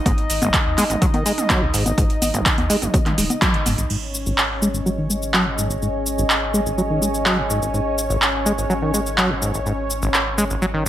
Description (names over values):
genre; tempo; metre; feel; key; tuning
acid house; 125 BPM; 4/4; straight; unclear; A4 = 440 Hz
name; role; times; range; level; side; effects
warm analog pad; sustained chords; 0.0-10.9 s; C#4 to D#5; -27 LUFS; left 1 dB; chorus, sidechain pumping
acid bass, saw; riff; 0.1-10.9 s; G#1 to G#3; -23 LUFS; equal; overdrive, sidechain pumping, dub echo
warm sub bass; bass; 0.1-10.9 s; D#1 to D#2; -28 LUFS; equal; tube saturation, sidechain pumping
electro analog drum machine; drums; 0.1-10.9 s; congas, crash cymbal, handclaps, hi-hat, shaker, toms; -21 LUFS; equal; overdrive
electronic kick drum; drums; 0.1-3.5 s; none; -20 LUFS; equal; overdrive
warbly tape-like pad; texture; 4.8-10.9 s; G#4 to G#5; -28 LUFS; right 1 dB; chorus, built-in reverb, sidechain pumping
room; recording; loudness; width
light reverb; none; -17 LUFS; side -12 dB against mid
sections
0.0-3.9 A section; 3.9-10.9 B section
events
band accent 3.4; filter sweep on acid bass 3.9-10.9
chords
0.0 G#5